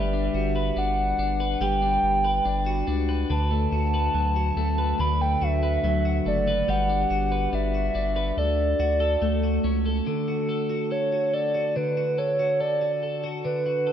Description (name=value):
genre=dream pop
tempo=71 BPM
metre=4/4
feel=straight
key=D major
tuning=A4 = 441 Hz
part: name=hollow clarinet-like synth lead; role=melody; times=0.0-13.9 s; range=A4 to B5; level=-25 LUFS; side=right 1 dB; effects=chorus, digital delay
part: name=twelve-string electric guitar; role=arpeggios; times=0.0-13.9 s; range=D3 to B4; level=-27 LUFS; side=left 3 dB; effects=wide subtle chorus, digital delay
part: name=round analog bass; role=bass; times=0.0-10.0 s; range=F#1 to D2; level=-26 LUFS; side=equal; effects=none
room=moderate lush hall reverb, RT60 2.1 s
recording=none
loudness=-22 LUFS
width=side -9 dB against mid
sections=0.0-10.1 A section; 10.1-13.9 B section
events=none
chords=0.0 Gmaj7; 3.3 D6; 6.7 Gmaj7; 8.4 Dmaj7; 10.1 D